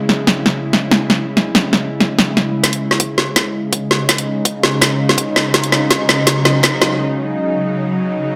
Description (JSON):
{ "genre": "half-time drum and bass", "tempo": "165 BPM", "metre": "4/4", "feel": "half-time", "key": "C# minor", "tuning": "A4 = 439 Hz", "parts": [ { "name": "bowed-like drone", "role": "sustained chords", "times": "0.0-8.4 s", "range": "C#3 to E4", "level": "-21 LUFS", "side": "equal", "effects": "built-in reverb, sidechain pumping" }, { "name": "drum and bass drum kit", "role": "drums", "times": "0.1-6.9 s", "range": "hi-hat, snare drum", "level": "-16 LUFS", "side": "equal", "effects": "none" }, { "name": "electronic kick drum", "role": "drums", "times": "2.6-6.7 s", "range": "none", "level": "-26 LUFS", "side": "equal", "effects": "high-pass filter on kick, high-pass filter on room" } ], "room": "moderate digital room reverb, RT60 1.3 s", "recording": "none", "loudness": "-15 LUFS", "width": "mono", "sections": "0.0-2.6 A section; 2.6-8.4 B section", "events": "build-up 2.6-8.4; drum fill 2.6-7.0; filter sweep on synth drone 2.6-8.4; break 7.0-8.4", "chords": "0.0 C#m; 2.6 C#5" }